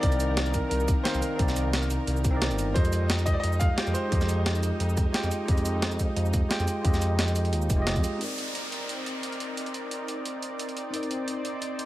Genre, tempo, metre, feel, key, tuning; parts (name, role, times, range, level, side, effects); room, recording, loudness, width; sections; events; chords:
liquid drum and bass; 176 BPM; 4/4; swing 53% on 16ths; C minor; A4 = 442 Hz
clear concert grand piano; melody; 0.0-7.8 s; Bb4 to F5; -34 LUFS; left 1 dB; tape echo
bell-like tine electric piano; accompaniment; 0.0-11.9 s; Ab3 to G5; -32 LUFS; equal; digital delay
lush unison pad; sustained chords; 0.0-11.9 s; Eb3 to D5; -36 LUFS; equal; chorus, sidechain pumping
smooth synth bass; bass; 0.0-8.0 s; F1 to F2; -27 LUFS; equal
breakbeat sampler-style drum kit; drums; 0.0-11.9 s; hi-hat, shaker, snare drum; -32 LUFS; equal
electronic kick drum; drums; 0.0-8.0 s; -25 LUFS; equal
downlifter; sound effects; 8.2-10.9 s; -37 LUFS; equal
digital ambience; -24 LUFS; side -15 dB against mid
0.0-8.2 A section; 8.2-11.9 B section
drop 0.0-8.2; band accent 7.9
0.0 Cm9; 2.8 Fm9; 8.2 Cm9